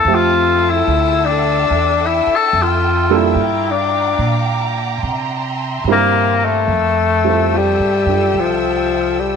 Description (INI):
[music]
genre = jazz ballad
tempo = 72 BPM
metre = 4/4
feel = swing 66% on 8ths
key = F major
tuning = A4 = 440 Hz
[part]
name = breathy tenor saxophone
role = melody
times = 0.0-9.4 s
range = F3 to A4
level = -15 LUFS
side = left 5 dB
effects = tape echo
[part]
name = warm baby grand piano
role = accompaniment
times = 0.0-9.4 s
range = F3 to E5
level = -20 LUFS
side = right 13 dB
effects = none
[part]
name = warm studio string section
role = sustained chords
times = 0.0-9.4 s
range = A4 to E6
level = -23 LUFS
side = right 4 dB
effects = none
[part]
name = upright bass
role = bass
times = 0.0-9.4 s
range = C2 to C3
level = -21 LUFS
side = right 2 dB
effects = none
[sound]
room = moderate echo chamber reverb, RT60 2.0 s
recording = 1960s-style stereo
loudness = -13 LUFS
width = side -6 dB against mid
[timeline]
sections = 0.0-6.7 A section; 6.7-9.4 B section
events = tenor saxophone solo 0.0-6.7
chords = 0.1 Fmaj9; 3.4 Gm7; 5.0 C7; 6.7 Fmaj9